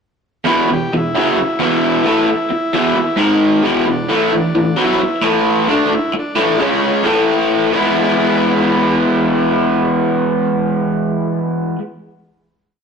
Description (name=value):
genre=rock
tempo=132 BPM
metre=4/4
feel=straight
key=E mixolydian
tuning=A4 = 440 Hz
part: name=raw garage guitar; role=riff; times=0.5-11.8 s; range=E2 to E4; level=-13 LUFS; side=equal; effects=overdrive
part: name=combo organ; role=melody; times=0.7-7.1 s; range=C#4 to G4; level=-21 LUFS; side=equal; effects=none
room=wet stone room reverb, RT60 1.2 s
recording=rough rehearsal-room recording, tube saturation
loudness=-13 LUFS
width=side -6 dB against mid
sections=0.5-7.7 riff; 7.7-11.4 final chord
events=none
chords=0.5 E5; 3.2 G#5; 3.7 E5; 4.1 A5; 6.6 C#5; 7.1 A5; 7.7 E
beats=| 0.48 0.93 1.38 1.84 | 2.29 2.74 3.20 3.65 | 4.11 4.56 5.02 5.47 | 5.93 6.38 6.84 7.29 | 7.75 8.20 8.65 9.11 | 9.56 10.01 10.46 10.91